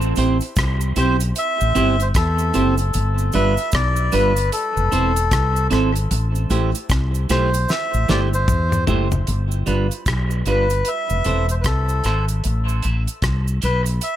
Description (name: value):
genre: dub reggae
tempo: 76 BPM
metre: 4/4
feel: swing 61% on 16ths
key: A minor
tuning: A4 = 439 Hz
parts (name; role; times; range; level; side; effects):
- mellow fretless electric bass; bass; 0.0-14.0 s; E1 to E2; -20 LUFS; equal; lush chorus
- cabasa; percussion; 0.0-14.2 s; none; -33 LUFS; right 11 dB; high-pass filter on perc
- clean electric guitar; accompaniment; 0.2-13.9 s; G3 to C5; -24 LUFS; right 3 dB; high-pass filter, tape echo
- damped 70s drum kit; drums; 0.2-14.2 s; hi-hat, kick drum, rim click, snare drum, toms; -24 LUFS; equal; none
- melodica; melody; 1.0-14.2 s; A4 to E5; -23 LUFS; left 1 dB; tape echo
room: light reverb, small room ambience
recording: none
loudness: -17 LUFS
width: side -12 dB against mid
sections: 0.0-9.3 A section; 9.3-14.2 B section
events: drum fill 7.7-9.3; filter sweep 9.3-14.2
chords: 0.0 Am7; 2.9 G7; 4.5 Fmaj7 (rootless); 6.1 Am7; 9.3 G7; 10.9 Fmaj7 (rootless); 12.4 Am7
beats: 0.57 1.36 2.15 | 2.94 3.73 4.52 5.31 | 6.11 6.90 7.69 8.48 | 9.27 10.06 10.86 11.65 | 12.44 13.23 14.02